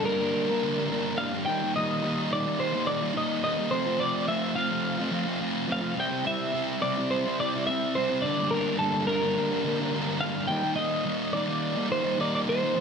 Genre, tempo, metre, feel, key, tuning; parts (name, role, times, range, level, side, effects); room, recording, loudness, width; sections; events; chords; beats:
rock; 106 BPM; 4/4; straight; A4 = 440 Hz
twelve-string electric guitar; melody; 0.0-12.8 s; A4 to G5; -28 LUFS; equal; slapback echo
thick fuzz guitar; riff; 0.0-12.8 s; F2 to F4; -27 LUFS; right 1 dB; distortion
moderate studio reverb, RT60 1.0 s; -25 LUFS; side -6 dB against mid
0.0-12.8 A section
0.0 Gm; 1.5 Eb; 3.7 F; 6.0 C; 8.2 Gm; 10.5 Eb
0.33 0.90 | 1.46 2.03 2.59 3.16 | 3.72 4.29 4.85 5.42 | 5.99 6.55 7.12 7.68 | 8.24 8.81 9.37 9.94 | 10.50 11.07 11.63 12.20 | 12.76